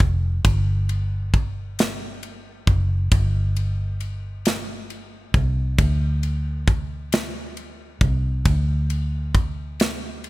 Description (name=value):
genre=six-eight pop ballad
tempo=45 BPM (dotted quarters)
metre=6/8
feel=straight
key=unclear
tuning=A4 = 440 Hz
part: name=vintage muted fingered electric bass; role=bass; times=0.0-10.3 s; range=F1 to D2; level=-22 LUFS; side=equal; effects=none
part: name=modern studio drum kit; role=drums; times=0.0-10.3 s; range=kick drum, ride cymbal, snare drum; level=-21 LUFS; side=equal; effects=none
room=little or no reverb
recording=none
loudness=-20 LUFS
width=side -19 dB against mid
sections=0.0-10.3 A section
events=none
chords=none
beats=| 0.45 1.78 | 3.12 4.45 | 5.78 7.12 | 8.45 9.79